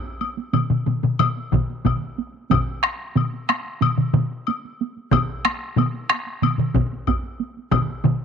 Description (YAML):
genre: japanese traditional, taiko drum ensemble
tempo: 92 BPM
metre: 4/4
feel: straight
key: none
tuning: none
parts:
  - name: taiko ensemble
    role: percussion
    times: 0.1-8.2 s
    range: none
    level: -28 LUFS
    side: right 9 dB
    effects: none
  - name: woodblock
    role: percussion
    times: 0.2-7.9 s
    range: none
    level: -26 LUFS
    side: left 8 dB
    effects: none
  - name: solo taiko drums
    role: percussion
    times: 0.5-8.2 s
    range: none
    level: -22 LUFS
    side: left 6 dB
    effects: none
  - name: taiko ensemble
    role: percussion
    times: 0.5-8.2 s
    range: none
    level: -24 LUFS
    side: right 9 dB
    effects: none
  - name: taiko ensemble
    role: percussion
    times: 1.5-7.9 s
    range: none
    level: -26 LUFS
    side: equal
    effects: none
room: moderate spring reverb, RT60 1.7 s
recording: 1960s-style stereo with parts hard left and right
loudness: -20 LUFS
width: side -7 dB against mid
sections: 0.0-8.2 A section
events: none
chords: none